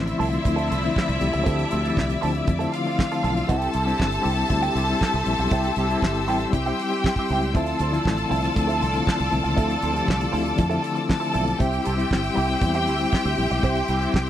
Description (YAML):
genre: disco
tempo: 118 BPM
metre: 4/4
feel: straight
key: D minor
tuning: A4 = 440 Hz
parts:
  - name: bright studio violin section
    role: second line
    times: 0.0-14.3 s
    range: E4 to A5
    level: -26 LUFS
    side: left 1 dB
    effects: none
  - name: reed electric piano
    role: accompaniment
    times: 0.0-14.3 s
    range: D3 to G4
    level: -26 LUFS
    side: left 4 dB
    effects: fast tremolo
  - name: clear studio string section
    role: sustained chords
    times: 0.0-14.3 s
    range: F3 to E6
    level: -32 LUFS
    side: left 1 dB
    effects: none
  - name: fingered electric bass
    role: bass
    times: 0.0-14.3 s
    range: G1 to F2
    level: -26 LUFS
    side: right 1 dB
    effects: none
  - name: semi-hollow electric guitar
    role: accompaniment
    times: 0.1-14.3 s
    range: F3 to C5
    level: -29 LUFS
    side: right 6 dB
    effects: wah
  - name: damped 70s drum kit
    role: drums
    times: 0.1-14.3 s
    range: handclaps, hi-hat, kick drum, snare drum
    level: -25 LUFS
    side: right 1 dB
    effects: none
room: little or no reverb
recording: dry, close 1970s-style studio recording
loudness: -20 LUFS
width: side -11 dB against mid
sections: 0.0-14.3 A section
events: none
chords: 0.0 Dm9; 3.5 C; 7.5 Dm9; 11.6 C